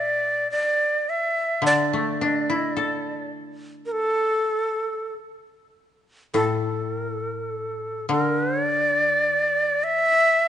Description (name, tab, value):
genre	japanese traditional, Japanese chamber music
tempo	52 BPM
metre	4/4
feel	rubato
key	unclear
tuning	A4 = 441 Hz
part	breathy bright shakuhachi	melody	0.0-10.5 s	A4 to E5	-21 LUFS	equal	none
part	koto	accompaniment	0.0-10.5 s	A2 to A4	-26 LUFS	left 2 dB	none
room	moderate scoring stage reverb, RT60 1.9 s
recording	dark, warm production, nothing above 10.3 kHz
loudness	-21 LUFS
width	side -10 dB against mid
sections	0.0-6.3 A section; 6.3-10.5 B section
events	none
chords	none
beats	0.49 | 1.62 2.75 3.91 5.13 | 6.34 7.52 8.69 9.83